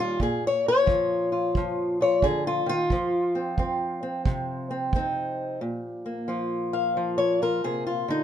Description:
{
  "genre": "acoustic country blues, solo or duo",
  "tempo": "89 BPM",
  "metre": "4/4",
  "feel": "swing 64% on 8ths",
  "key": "unclear",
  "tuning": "A4 = 440 Hz",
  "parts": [
    { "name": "fingerpicked old ladder-braced acoustic guitar", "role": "melody", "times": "0.0-8.2 s", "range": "Bb2 to F5", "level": "-24 LUFS", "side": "left 1 dB", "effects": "none" },
    { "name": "kick drum", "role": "drums", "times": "0.2-5.1 s", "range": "none", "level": "-27 LUFS", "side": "right 2 dB", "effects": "none" }
  ],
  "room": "light reverb",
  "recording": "minimal, uncompressed stereo recording",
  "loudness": "-23 LUFS",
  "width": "side -9 dB against mid",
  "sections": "0.0-5.6 A section; 5.6-8.2 A section",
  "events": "steel-string acoustic guitar solo 0.0-5.6, 5.6-8.2",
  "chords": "0.2 Bb5; 2.9 F5; 5.6 Bb5"
}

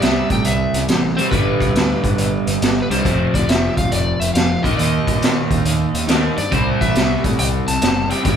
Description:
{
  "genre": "blues rock power trio and southern rock",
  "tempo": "138 BPM",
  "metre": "4/4",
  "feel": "swing 67% on 8ths",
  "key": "unclear",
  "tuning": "A4 = 441 Hz",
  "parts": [
    { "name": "overdriven slide guitar", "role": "melody", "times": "0.0-8.4 s", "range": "B4 to A5", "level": "-24 LUFS", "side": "equal", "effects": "none" },
    { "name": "crunchy overdriven guitar", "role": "riff", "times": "0.0-8.4 s", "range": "F2 to Eb4", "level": "-20 LUFS", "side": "right 1 dB", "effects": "none" },
    { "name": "fuzz picked electric bass", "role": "bass", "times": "0.0-8.4 s", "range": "F1 to Bb2", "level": "-22 LUFS", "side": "equal", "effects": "overdrive" },
    { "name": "raw garage drum kit", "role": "drums", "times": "0.0-8.4 s", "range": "hi-hat, kick drum, snare drum", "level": "-19 LUFS", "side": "equal", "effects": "none" }
  ],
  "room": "light reverb",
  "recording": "band playing live in one room",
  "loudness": "-15 LUFS",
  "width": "side -8 dB against mid",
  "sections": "0.0-8.4 A section",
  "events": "none",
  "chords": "0.0 C; 1.3 G; 3.0 F5; 4.6 Eb5; 6.5 C"
}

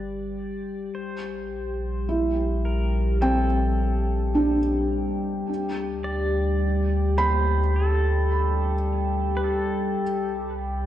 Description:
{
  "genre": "ambient",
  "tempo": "53 BPM",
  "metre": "4/4",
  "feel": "straight",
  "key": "unclear",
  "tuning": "A4 = 440 Hz",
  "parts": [
    { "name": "pedal steel guitar", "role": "melody", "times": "0.0-10.5 s", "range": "A4 to D5", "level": "-36 LUFS", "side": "right 1 dB", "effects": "diffuse ambient delay" },
    { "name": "round analog bass", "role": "bass", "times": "0.0-10.9 s", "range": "G1 to D2", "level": "-25 LUFS", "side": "equal", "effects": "none" },
    { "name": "analog drone", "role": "drone", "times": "0.0-10.9 s", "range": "G3 to G4", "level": "-28 LUFS", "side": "left 2 dB", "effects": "chorus" },
    { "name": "felt-muted upright piano", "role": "arpeggios", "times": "2.1-10.9 s", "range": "C4 to B5", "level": "-27 LUFS", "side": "right 1 dB", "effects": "diffuse ambient delay" }
  ],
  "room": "moderate concert hall reverb, RT60 1.9 s",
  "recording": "dark, warm production, nothing above 10.6 kHz",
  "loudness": "-22 LUFS",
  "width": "side -12 dB against mid",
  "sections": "0.0-10.9 A section",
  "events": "fade-in on pedal steel guitar 0.0-10.9",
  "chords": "0.0 G5; 1.0 Bbmaj7; 5.5 D5; 10.0 C5"
}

